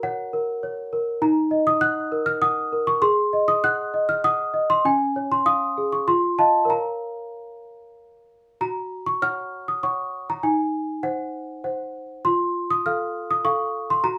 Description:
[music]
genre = classical, lullaby for celesta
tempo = 99 BPM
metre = 3/4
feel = rubato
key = unclear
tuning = A4 = 441 Hz
[part]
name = worn celesta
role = solo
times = 0.0-14.2 s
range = Db4 to Gb6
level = -23 LUFS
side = equal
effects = none
[sound]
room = moderate studio ambience, RT60 0.5 s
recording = band playing live in one room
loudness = -23 LUFS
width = mono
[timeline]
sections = 0.0-8.6 A section; 8.6-14.2 A section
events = none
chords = 0.0 Gb; 1.2 Ebm; 3.0 Ab5; 4.8 Db; 6.1 F7; 6.7 Bbm; 8.6 Gb5; 10.4 Cdim/Eb; 12.2 F

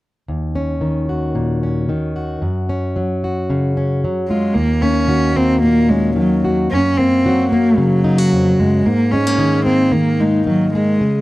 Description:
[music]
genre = folk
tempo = 112 BPM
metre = 4/4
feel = straight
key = Eb dorian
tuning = A4 = 441 Hz
[part]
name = fingerpicked plugged-in steel-string acoustic guitar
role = accompaniment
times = 0.3-11.2 s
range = Eb2 to Ab4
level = -17 LUFS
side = left 1 dB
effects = none
[part]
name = warm cello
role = melody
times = 4.3-11.2 s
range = Gb3 to Db4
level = -15 LUFS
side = right 1 dB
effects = none
[sound]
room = light reverb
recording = dry, close 1970s-style studio recording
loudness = -14 LUFS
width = side -18 dB against mid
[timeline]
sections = 0.3-4.6 A section; 4.6-11.2 B section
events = none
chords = 0.3 Ebm7; 2.4 Gb5; 4.6 Ebm7; 6.7 Gb; 8.9 Absus2

